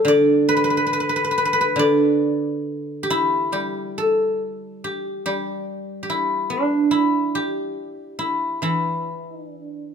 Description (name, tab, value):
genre	chinese traditional, Chinese solo plucked strings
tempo	67-73 BPM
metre	2/4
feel	rubato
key	D zhi mode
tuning	A4 = 440 Hz
part	guzheng	solo	0.0-9.9 s	D3 to E5	-19 LUFS	equal	none
room	light reverb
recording	close, detailed microphones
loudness	-19 LUFS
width	side -6 dB against mid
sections	0.0-3.5 A section; 3.5-9.9 B section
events	none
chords	none